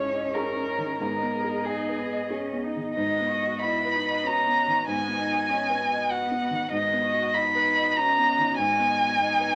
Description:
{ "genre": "neoclassical piano and strings", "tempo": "89-100 BPM", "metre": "3/4", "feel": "rubato", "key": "unclear", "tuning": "A4 = 438 Hz", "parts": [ { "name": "muted violin", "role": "melody", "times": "0.0-9.6 s", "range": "G#4 to B5", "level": "-26 LUFS", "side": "equal", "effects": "none" }, { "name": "muted cello", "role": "second line", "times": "0.0-9.6 s", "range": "B3 to F#4", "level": "-37 LUFS", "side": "equal", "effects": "none" }, { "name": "felt-muted upright piano", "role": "accompaniment", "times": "0.0-9.6 s", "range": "G#2 to C#6", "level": "-34 LUFS", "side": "equal", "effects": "none" }, { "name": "muted studio string section", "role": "sustained chords", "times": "0.0-9.6 s", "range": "B3 to D#5", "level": "-41 LUFS", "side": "equal", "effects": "none" }, { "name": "concert harp", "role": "arpeggios", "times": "0.0-9.6 s", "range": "B3 to D#6", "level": "-42 LUFS", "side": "equal", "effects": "none" } ], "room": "wet studio ambience, RT60 0.5 s", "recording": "none", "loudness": "-25 LUFS", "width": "mono", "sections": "0.0-3.0 A section; 3.0-9.6 A section", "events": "none", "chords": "0.0 C#madd9/G#; 1.0 G#m; 3.0 B/G#", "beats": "0.35 | 1.00 1.65 2.31 | 2.97 3.64 4.26 | 4.88 5.50 6.11 | 6.71 7.35 7.98 | 8.59 9.19" }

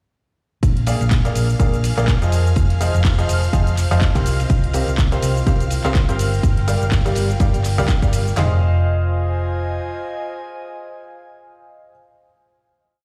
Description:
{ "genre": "piano house", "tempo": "124 BPM", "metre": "4/4", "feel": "swing 57% on 16ths", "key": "F dorian", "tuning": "A4 = 440 Hz", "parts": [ { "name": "string machine, violins", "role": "sustained chords", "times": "0.6-8.4 s", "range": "F5 to F6", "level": "-36 LUFS", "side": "equal", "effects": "ensemble chorus, sidechain pumping" }, { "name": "hollow-body short-scale fingered electric bass", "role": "bass", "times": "0.6-9.8 s", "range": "F1 to F2", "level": "-21 LUFS", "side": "equal", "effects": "sidechain pumping" }, { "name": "cloth-damped thuddy drum kit", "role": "drums", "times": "0.6-8.4 s", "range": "hi-hat, ride cymbal, snare drum", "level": "-41 LUFS", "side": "equal", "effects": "none" }, { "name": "house drum kit", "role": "drums", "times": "0.6-8.5 s", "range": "handclaps, kick drum, snare drum, toms", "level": "-20 LUFS", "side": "equal", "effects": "none" }, { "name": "punchy analog drum machine", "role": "drums", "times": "0.6-8.4 s", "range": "handclaps, hi-hat, shaker", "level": "-32 LUFS", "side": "equal", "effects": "overdrive" }, { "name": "airy breathy pad", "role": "texture", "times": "1.0-12.1 s", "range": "F4 to Ab5", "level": "-34 LUFS", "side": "equal", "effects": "chorus, sidechain pumping" }, { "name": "clear upright piano", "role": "riff", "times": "0.9-11.9 s", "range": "F3 to F5", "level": "-27 LUFS", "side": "equal", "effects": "sidechain pumping, dub echo" } ], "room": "little or no reverb", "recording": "played on a big sound system in a bare room, stone room reverb", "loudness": "-18 LUFS", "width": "mono", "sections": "0.6-8.4 drop; 8.4-12.2 final chord", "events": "drop 0.6-8.4", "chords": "0.6 Bb7; 2.3 Fm7; 4.3 C7sus4; 6.4 Gm7; 8.4 Fm7", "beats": "| 0.63 1.11 1.60 2.08 | 2.56 3.05 3.53 4.01 | 4.50 4.98 5.47 5.95 | 6.43 6.92 7.40 7.89 | 8.37 8.85 9.34 9.82 | 10.31 10.79 11.27 11.76" }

